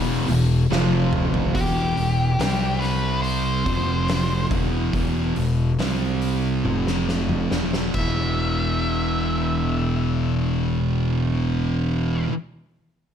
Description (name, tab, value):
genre	stoner and doom metal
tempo	70 BPM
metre	4/4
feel	straight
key	E minor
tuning	A4 = 438 Hz
part	fuzz guitar	riff	0.0-1.5 s	E2 to F3	-27 LUFS	right 1 dB	distortion
part	thick fuzz guitar	riff	0.0-12.3 s	E2 to C4	-25 LUFS	left 6 dB	distortion
part	thick fuzz guitar	riff	0.0-12.3 s	E2 to C4	-25 LUFS	right 7 dB	distortion
part	fuzz fingered electric bass	bass	0.0-12.2 s	E1 to C2	-26 LUFS	equal	overdrive
part	oversized low-tuned drum kit	drums	0.3-8.2 s	crash cymbal, hi-hat, kick drum, snare drum, toms	-28 LUFS	left 1 dB	none
part	octave-fuzz lead guitar	melody	1.5-12.2 s	G4 to E5	-27 LUFS	left 2 dB	distortion, slapback echo
room	light reverb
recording	none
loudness	-20 LUFS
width	side -8 dB against mid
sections	0.0-1.5 A section; 1.5-8.4 B section; 8.4-11.9 C section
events	drum fill 0.7-1.5, 6.7-8.4; slowing down 1.5-8.4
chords	0.0 E5; 0.7 F5; 1.5 Em; 2.4 C5; 3.7 F5; 4.5 E5; 5.8 C5; 6.7 F5; 7.5 E5